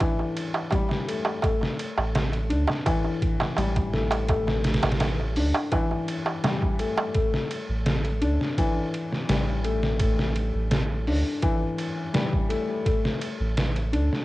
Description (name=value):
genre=trip hop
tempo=84 BPM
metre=4/4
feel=straight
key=unclear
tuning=A4 = 440 Hz
part: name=felt-muted upright piano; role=arpeggios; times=0.0-14.2 s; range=E3 to D4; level=-28 LUFS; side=left 2 dB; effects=cassette tape, tape echo
part: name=trip hop sampler-style drum kit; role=drums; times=0.0-14.2 s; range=hi-hat, kick drum, ride cymbal, snare drum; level=-27 LUFS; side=equal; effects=small room ambience, cassette tape
part: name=darbuka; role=percussion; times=0.0-7.1 s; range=none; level=-29 LUFS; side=right 3 dB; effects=none
part: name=soft dub sub bass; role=bass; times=2.0-14.1 s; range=A1 to D2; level=-26 LUFS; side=equal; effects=tube saturation
room=digital ambience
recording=home recording on cassette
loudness=-23 LUFS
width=side -18 dB against mid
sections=0.0-7.1 A section; 7.1-14.2 A section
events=none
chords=0.0 A7sus4; 12.9 N.C.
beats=0.00 0.72 | 1.43 2.15 2.86 3.58 | 4.29 5.00 5.72 6.43 | 7.15 7.86 8.58 9.29 | 10.00 10.72 11.43 12.15 | 12.86 13.58